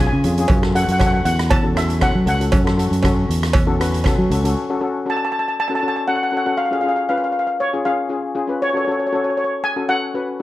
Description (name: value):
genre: calypso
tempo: 118 BPM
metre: 4/4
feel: straight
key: F# minor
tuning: A4 = 441 Hz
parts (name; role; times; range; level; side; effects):
- steel pan; melody; 0.0-10.4 s; C#5 to A5; -20 LUFS; left 1 dB; none
- steel pan; accompaniment; 0.0-10.4 s; C#4 to B4; -23 LUFS; left 3 dB; none
- fingered electric bass; bass; 0.0-4.5 s; C#2 to F#3; -19 LUFS; equal; none
- street-band drum kit; drums; 0.2-4.6 s; hi-hat, kick drum, rim click; -20 LUFS; equal; none
- cowbell; percussion; 0.5-4.2 s; none; -24 LUFS; right 4 dB; none
room: light reverb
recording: dark, warm production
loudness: -16 LUFS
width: side -15 dB against mid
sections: 0.0-4.6 A section; 4.6-10.4 A section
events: none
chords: 0.5 F#m; 2.5 F#m7; 4.6 F#m; 6.6 C#; 8.6 F#m